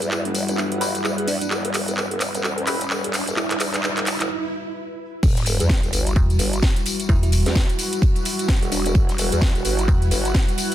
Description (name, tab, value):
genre	bass house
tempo	129 BPM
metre	4/4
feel	swing 60% on 16ths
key	E minor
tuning	A4 = 441 Hz
part	dark analog pad	sustained chords	0.0-10.7 s	G3 to F#4	-28 LUFS	left 1 dB	chorus, vintage 12-bit sampler grit, sidechain pumping
part	vowel-sweep wobble bass	bass	0.0-10.3 s	E1 to E2	-25 LUFS	equal	chorus, overdrive, sidechain pumping, high-pass filter
part	house drum kit	drums	0.0-10.7 s	crash cymbal, handclaps, hi-hat, snare drum, tambourine	-25 LUFS	equal	high-pass filter on hats, high-pass filter on snare, high-pass filter on perc, high-pass filter on cymbals, high-pass filter on room
part	riser and sub drop	sound effects	0.2-7.1 s	none	-31 LUFS	right 2 dB	none
part	granular cloud pad	texture	0.0-10.7 s	E4 to F#5	-32 LUFS	right 2 dB	built-in reverb, tremolo, sidechain pumping
part	band-passed chord stab	stabs	0.8-2.8 s	E4 to B4	-29 LUFS	left 3 dB	phaser, sidechain pumping, ping-pong delay
part	bell-like FM electric piano	melody	1.3-3.6, 7.1-8.9 s	D4 to E4	-31 LUFS	right 2 dB	chorus, tremolo, ping-pong delay
part	compact cocktail drum kit	drums	5.2-10.7 s	ride cymbal, snare drum	-37 LUFS	right 6 dB	high-pass filter on cymbals, high-pass filter on snare, high-pass filter on room
part	electronic kick drum	drums	5.2-10.5 s	none	-18 LUFS	equal	none
part	metallic FM bass	bass	6.2-10.1 s	E1	-19 LUFS	equal	tube saturation, sidechain pumping
room	digital ambience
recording	dense, heavily limited modern master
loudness	-18 LUFS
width	side -12 dB against mid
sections	0.0-5.2 A section; 5.2-10.7 B section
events	build-up 0.0-5.2; drum fill 0.0-4.3; filter sweep on analog synth pad 0.0-5.2; riser 0.2-4.3; break 4.3-5.2; drop 5.2-10.7; impact 5.2-7.1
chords	0.0 Emadd9